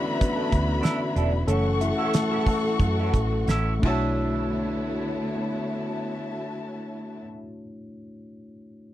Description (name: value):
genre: lush 1970s-style soul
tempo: 83-97 BPM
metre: 4/4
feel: swing 54% on 16ths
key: B minor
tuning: A4 = 440 Hz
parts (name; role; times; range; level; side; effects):
- dark studio string section; second line; 0.0-7.2 s; F#4 to C#6; -32 LUFS; left 4 dB; none
- tine electric piano; accompaniment; 0.0-8.9 s; D3 to E5; -28 LUFS; left 1 dB; none
- warm studio string section; sustained chords; 0.0-7.2 s; D3 to C#5; -35 LUFS; right 2 dB; none
- clean electric guitar; riff; 0.1-7.4 s; C#4 to A4; -33 LUFS; right 5 dB; wah, wide subtle chorus
- damped 70s drum kit; drums; 0.2-4.0 s; crash cymbal, hi-hat, kick drum, snare drum; -24 LUFS; right 1 dB; none
- vintage muted fingered electric bass; bass; 0.5-7.2 s; E1 to F#2; -26 LUFS; right 1 dB; none
room: little or no reverb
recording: dry, close 1970s-style studio recording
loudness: -23 LUFS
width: side -13 dB against mid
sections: 0.0-4.2 A section; 4.2-7.1 B section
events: slowing down 0.0-4.2; tine electric piano solo 0.0-4.2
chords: 0.0 Bm11; 1.5 F#m7; 3.8 Bm11